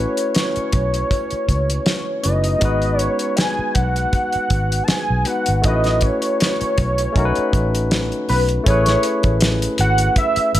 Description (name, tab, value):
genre	lush 1970s-style soul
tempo	80 BPM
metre	4/4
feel	swing 54% on 16ths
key	unclear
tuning	A4 = 440 Hz
part	fat analog lead	melody	0.0-10.6 s	B4 to A5	-21 LUFS	right 1 dB	chorus, slapback echo
part	barky tine electric piano	accompaniment	0.0-10.6 s	G#3 to B4	-23 LUFS	left 2 dB	overdrive
part	vintage muted fingered electric bass	bass	0.0-10.6 s	F#1 to C#2	-20 LUFS	equal	none
part	cloth-damped thuddy drum kit	drums	0.2-10.6 s	hi-hat, kick drum, snare drum	-20 LUFS	equal	none
room	studio reverb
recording	none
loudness	-16 LUFS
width	side -13 dB against mid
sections	0.0-8.7 A section; 8.7-10.6 B section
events	none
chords	0.0 A6; 2.6 G#m7; 5.6 A6; 7.2 B7; 8.7 Amaj7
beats	0.36 1.11 1.87 | 2.62 3.38 4.13 4.89 | 5.64 6.40 7.15 7.91 | 8.66 9.41 10.16